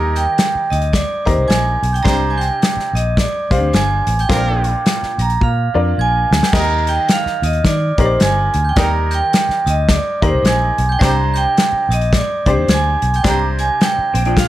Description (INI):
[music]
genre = uptempo 1960s-style soul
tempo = 107 BPM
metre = 4/4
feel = swing 60% on 8ths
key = Eb major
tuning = A4 = 443 Hz
[part]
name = vibraphone with hard mallets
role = melody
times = 0.0-14.5 s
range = C5 to Bb5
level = -18 LUFS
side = right 3 dB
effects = none
[part]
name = clear horn section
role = second line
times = 0.0-13.7 s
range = F3 to C5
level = -25 LUFS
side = right 2 dB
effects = none
[part]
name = glockenspiel with brass mallets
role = second line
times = 0.0-14.5 s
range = C6 to Bb6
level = -26 LUFS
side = right 2 dB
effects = none
[part]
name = bright upright piano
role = accompaniment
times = 0.0-14.1 s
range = Bb2 to F5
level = -23 LUFS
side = left 4 dB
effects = none
[part]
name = vintage muted fingered electric bass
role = bass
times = 0.0-14.5 s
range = G1 to Eb3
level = -18 LUFS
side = equal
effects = none
[part]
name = natural country drum kit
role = drums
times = 0.2-14.5 s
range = crash cymbal, hi-hat, kick drum, snare drum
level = -17 LUFS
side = left 1 dB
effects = none
[part]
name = electric guitar through a small old amp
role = riff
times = 14.1-14.5 s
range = F3 to F4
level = -20 LUFS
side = left 5 dB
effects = ensemble chorus
[sound]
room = small room ambience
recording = none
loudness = -13 LUFS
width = side -14 dB against mid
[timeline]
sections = 0.0-6.5 A section; 6.5-14.5 A section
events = drum fill 5.4-6.5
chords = 0.0 Eb; 2.1 Csus2; 4.3 Bb; 6.5 Eb; 11.0 Csus2